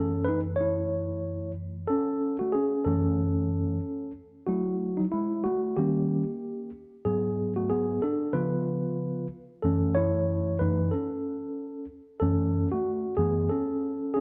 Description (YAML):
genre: hip hop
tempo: 93 BPM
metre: 4/4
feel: swing 59% on 16ths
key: F# dorian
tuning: A4 = 440 Hz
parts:
  - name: mellow tine electric piano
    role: solo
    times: 0.0-14.2 s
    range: F#2 to C#5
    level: -28 LUFS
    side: equal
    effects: none
room: moderate echo chamber reverb, RT60 1.8 s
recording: worn, warbling old tape, cassette tape, warbly pitch drift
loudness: -28 LUFS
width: mono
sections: 0.0-4.5 A section; 4.5-14.2 A section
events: tine electric piano solo 0.0-4.5, 4.5-14.2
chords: 0.0 F#m7; 4.5 F#m9; 5.8 D#7; 7.1 G#m7b5; 8.3 C#7; 9.6 F#m7